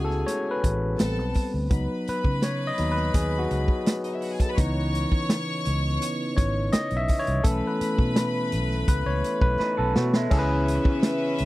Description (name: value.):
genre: lush 1970s-style soul.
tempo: 84 BPM.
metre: 4/4.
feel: straight.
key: C# minor.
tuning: A4 = 441 Hz.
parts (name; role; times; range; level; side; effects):
clear studio string section; second line; 0.0-11.5 s; C#4 to C#6; -33 LUFS; left 1 dB; none.
overdriven tine electric piano; accompaniment; 0.0-11.5 s; E3 to E5; -27 LUFS; left 2 dB; none.
vintage muted fingered electric bass; bass; 0.0-11.5 s; G#1 to C#3; -27 LUFS; equal; none.
vintage drum kit; drums; 0.1-11.5 s; crash cymbal, hi-hat, kick drum, snare drum; -24 LUFS; equal; none.
percussive tonewheel organ; sustained chords; 4.6-11.5 s; C#3 to E4; -33 LUFS; right 2 dB; slow rotary speaker.
electric guitar through a small old amp; riff; 9.6-10.5 s; G#3 to B4; -30 LUFS; right 5 dB; none.
room: little or no reverb.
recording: dry, close 1970s-style studio recording.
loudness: -22 LUFS.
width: side -18 dB against mid.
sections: 0.0-10.3 A section; 10.3-11.5 B section.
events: tine electric piano solo 0.0-10.3; drum fill 9.6-10.3.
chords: 0.0 Amaj7/C#; 1.0 Am7; 1.7 G#m7/C#; 4.6 C#m9; 7.4 B7sus4; 10.3 C#m7.